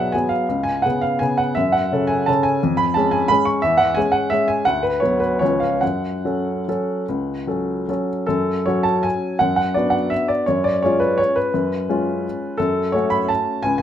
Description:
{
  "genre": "classical, piano waltz",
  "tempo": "139-188 BPM",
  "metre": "3/4",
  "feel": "rubato",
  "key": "F# minor",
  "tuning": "A4 = 440 Hz",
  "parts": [
    { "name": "clear upright piano", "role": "solo", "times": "0.0-13.8 s", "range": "B1 to C#6", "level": "-17 LUFS", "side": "equal", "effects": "none" }
  ],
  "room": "moderate recital hall reverb, RT60 1.4 s",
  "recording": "close, detailed microphones",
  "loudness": "-17 LUFS",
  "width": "side -10 dB against mid",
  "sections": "0.0-8.3 A section; 8.3-13.8 B section",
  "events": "none",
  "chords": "0.5 C#5; 1.6 F#m; 2.6 C#/E#; 3.6 C#m/E; 4.7 Bm/D; 5.4 C#7; 5.8 F#m; 9.4 Bm/F#; 10.5 C#7/F#; 12.6 F#m",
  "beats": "0.14 | 0.49 0.85 1.22 | 1.57 1.92 2.28 | 2.63 2.95 3.30 | 3.63 3.97 4.32 | 4.67 5.03 5.41 | 5.82 6.24 6.67 | 7.08 7.47 7.89 | 8.29 8.67 9.05 | 9.41 9.75 10.11 | 10.47 10.82 11.19 | 11.54 11.88 12.24 | 12.60 12.94 13.30 | 13.64"
}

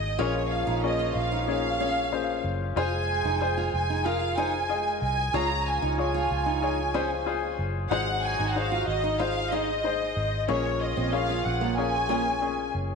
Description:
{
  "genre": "piano-driven pop",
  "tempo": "93 BPM",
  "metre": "4/4",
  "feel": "straight",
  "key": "unclear",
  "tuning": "A4 = 441 Hz",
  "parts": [
    { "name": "warm studio violin section", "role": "melody", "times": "0.0-12.7 s", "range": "Db5 to Bb5", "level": "-28 LUFS", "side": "equal", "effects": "slapback echo" },
    { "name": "clear upright piano", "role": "accompaniment", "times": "0.0-12.9 s", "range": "Ab2 to Eb5", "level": "-30 LUFS", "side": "left 10 dB", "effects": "none" },
    { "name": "vintage muted fingered electric bass", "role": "bass", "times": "0.0-12.9 s", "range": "F1 to Db2", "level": "-31 LUFS", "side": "equal", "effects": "none" },
    { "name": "warm French horn section", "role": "second line", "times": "0.2-12.7 s", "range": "F3 to Ab4", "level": "-36 LUFS", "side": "right 10 dB", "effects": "none" },
    { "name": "fingerpicked steel-string acoustic guitar", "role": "riff", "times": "0.2-12.2 s", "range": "Bb3 to F4", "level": "-34 LUFS", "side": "right 12 dB", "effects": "none" }
  ],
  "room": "moderate echo chamber reverb, RT60 2.4 s",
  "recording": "1960s-style stereo with parts hard left and right",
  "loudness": "-24 LUFS",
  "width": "side -5 dB against mid",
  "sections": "0.0-12.9 A section",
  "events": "none",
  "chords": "0.2 Bbm7; 2.8 Fm; 5.3 Db; 7.9 Ab; 10.5 Bbm7",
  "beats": "| 0.19 0.83 1.48 2.12 | 2.76 3.41 4.05 4.69 | 5.34 5.98 6.62 7.27 | 7.91 8.56 9.20 9.84 | 10.49 11.13 11.77 12.42"
}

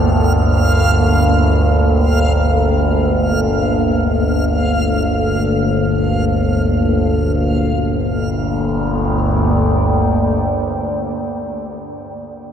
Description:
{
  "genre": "dark ambient drone",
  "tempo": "free time",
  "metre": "none",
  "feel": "none",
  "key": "G minor",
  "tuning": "A4 = 440 Hz",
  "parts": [
    { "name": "deep dark ambient pad", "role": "sustained chords", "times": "0.0-12.0 s", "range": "Bb3 to G5", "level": "-20 LUFS", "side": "equal", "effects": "chorus, built-in reverb" },
    { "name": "overtone-sweeping drone", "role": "drone", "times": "0.0-11.5 s", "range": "G1 to D2", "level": "-15 LUFS", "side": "equal", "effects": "chorus, built-in reverb" },
    { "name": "backwards swelling texture", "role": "texture", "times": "0.0-7.6 s", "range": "F5", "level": "-24 LUFS", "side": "equal", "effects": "built-in reverb" }
  ],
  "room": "wet huge ambient reverb, RT60 7.1 s",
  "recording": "in a vast, echoing space",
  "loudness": "-13 LUFS",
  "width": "side -8 dB against mid",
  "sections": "0.0-7.5 A section; 7.5-11.2 B section",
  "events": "none",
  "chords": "0.0 Gmadd9",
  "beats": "free time"
}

